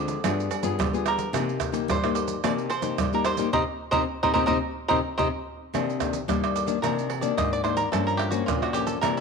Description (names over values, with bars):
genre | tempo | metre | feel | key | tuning
samba and choro | 109 BPM | 4/4 | straight | C minor | A4 = 440 Hz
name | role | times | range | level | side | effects
bluegrass banjo | melody | 0.0-9.2 s | E4 to F5 | -27 LUFS | right 3 dB | none
nylon-string guitar | accompaniment | 0.0-9.2 s | G2 to Ab4 | -28 LUFS | left 10 dB | none
nylon-string guitar | bass | 0.0-9.2 s | G2 to G3 | -31 LUFS | equal | none
maracas, pandeiro, agogo bells, surdo and tamborim | percussion | 0.1-9.2 s | none | -29 LUFS | right 8 dB | none
room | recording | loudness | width
moderate echo chamber reverb, RT60 1.4 s, small room reverb | 1960s-style stereo with parts hard left and right | -23 LUFS | side -5 dB against mid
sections
0.0-5.7 A section; 5.7-9.2 B section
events
band accent 3.5-5.7; five-string banjo solo 5.7-9.2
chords
0.2 G7b9; 1.3 Cm7; 5.7 Cm9; 7.9 Gm7b5